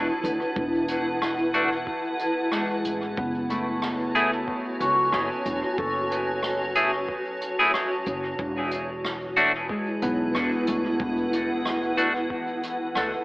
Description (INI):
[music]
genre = ambient dub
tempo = 92 BPM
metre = 4/4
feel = swing 56% on 16ths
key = unclear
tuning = A4 = 441 Hz
[part]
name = granular cloud pad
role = sustained chords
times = 0.0-13.2 s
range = E4 to A5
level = -27 LUFS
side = equal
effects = built-in reverb, vintage 12-bit sampler grit
[part]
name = upright bass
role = bass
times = 0.0-13.1 s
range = E1 to D2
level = -35 LUFS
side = equal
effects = none
[part]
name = jazz brush drum kit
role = drums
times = 0.2-13.1 s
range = hi-hat, rim click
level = -34 LUFS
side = equal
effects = dub echo
[part]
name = electronic kick drum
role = drums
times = 0.6-12.4 s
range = none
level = -37 LUFS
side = equal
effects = none
[part]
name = clean electric guitar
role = stabs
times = 1.5-12.1 s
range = A3 to G#4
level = -26 LUFS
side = equal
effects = vintage 12-bit sampler grit, dub echo
[part]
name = Celtic harp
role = arpeggios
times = 2.5-13.2 s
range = G#3 to C#6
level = -29 LUFS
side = equal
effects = dub echo
[sound]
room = wet echo chamber reverb, RT60 2.3 s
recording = AM radio sound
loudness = -23 LUFS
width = side -22 dB against mid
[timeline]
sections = 0.0-13.2 A section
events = none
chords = 0.0 Esus4; 3.2 F#m7; 8.4 E9sus4